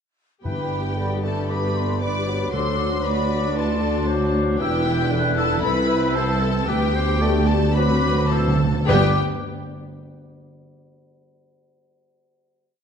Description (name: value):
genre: classical, dramatic, fast romantic movement for symphony orchestra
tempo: 104-117 BPM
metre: 4/4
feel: straight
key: G major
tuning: A4 = 440 Hz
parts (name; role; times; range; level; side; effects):
- bright large flute ensemble; second line; 0.4-9.2 s; B5 to G6; -29 LUFS; left 1 dB; none
- clear clarinet; second line; 0.4-9.1 s; A4 to D5; -31 LUFS; left 4 dB; none
- rich studio violin section; second line; 0.4-9.2 s; G4 to D5; -31 LUFS; left 5 dB; none
- mellow bassoon; accompaniment; 0.4-9.1 s; D3 to A3; -29 LUFS; right 1 dB; none
- rich symphonic viola section; accompaniment; 0.4-9.2 s; B3 to G4; -29 LUFS; equal; none
- dark French horn section; sustained chords; 0.4-9.1 s; B3 to B4; -28 LUFS; left 4 dB; none
- mellow tuba; bass; 0.4-9.1 s; E1 to D2; -28 LUFS; right 3 dB; none
- rich chamber double bass section; bass; 0.4-9.2 s; E1 to D2; -26 LUFS; right 2 dB; none
- rich symphonic cello section; bass; 0.4-9.2 s; C2 to G2; -28 LUFS; right 1 dB; none
- timpani; percussion; 0.4-3.3, 6.7-9.1 s; G2 to D3; -27 LUFS; right 1 dB; none
- rich symphonic violin section; melody; 0.5-9.2 s; G5 to D6; -29 LUFS; left 4 dB; none
room: wet scoring stage reverb, RT60 1.6 s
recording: dark, warm production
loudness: -18 LUFS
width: side -7 dB against mid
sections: 0.4-8.9 A section; 8.9-11.1 final chord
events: slowing down 3.6-8.9; timpani fill 7.8-8.9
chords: 0.4 G; 2.5 D7; 4.6 Em7; 5.6 Am/C; 6.7 G/D; 7.8 D13; 8.9 G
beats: | 0.45 0.98 1.50 2.02 | 2.53 3.05 3.57 4.08 | 4.59 5.11 5.63 6.15 | 6.67 7.21 7.75 8.31 | 8.88